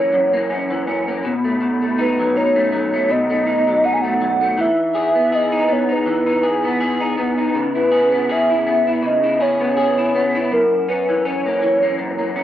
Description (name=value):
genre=indie pop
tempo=81 BPM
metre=4/4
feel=swing 55% on 16ths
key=E major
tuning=A4 = 440 Hz
part: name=hollow clarinet-like synth lead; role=melody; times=0.0-12.4 s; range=A#4 to G#5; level=-18 LUFS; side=equal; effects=wide subtle chorus
part: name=electric guitar through a small old amp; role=accompaniment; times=0.0-12.4 s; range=F#2 to G#4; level=-19 LUFS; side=left 1 dB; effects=ensemble chorus, vibrato effect
room=light reverb, digital ambience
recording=home recording on cassette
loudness=-15 LUFS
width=side -12 dB against mid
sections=0.0-12.4 A section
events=none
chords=0.0 F#7; 1.2 B7; 4.6 Emaj7; 7.5 C#m7; 10.5 F#7